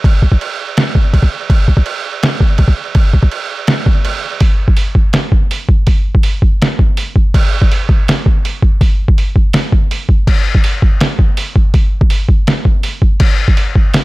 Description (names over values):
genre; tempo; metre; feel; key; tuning
metal; 164 BPM; 4/4; straight; none; none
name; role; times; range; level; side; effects
lo-fi sampler-style drum kit; drums; 0.0-14.0 s; crash cymbal, hi-hat, kick drum, snare drum; -10 LUFS; equal; overdrive
room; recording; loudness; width
little or no reverb; none; -10 LUFS; side -21 dB against mid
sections
0.0-4.4 A section; 4.4-14.0 B section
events
break 4.0-4.4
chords
none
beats
| 0.04 0.40 0.77 1.13 | 1.50 1.86 2.22 2.59 | 2.95 3.32 3.68 4.05 | 4.41 4.78 5.14 5.51 | 5.88 6.24 6.61 6.97 | 7.34 7.71 8.07 8.44 | 8.81 9.17 9.54 9.91 | 10.27 10.64 11.01 11.37 | 11.74 12.11 12.48 12.84 | 13.21 13.58 13.95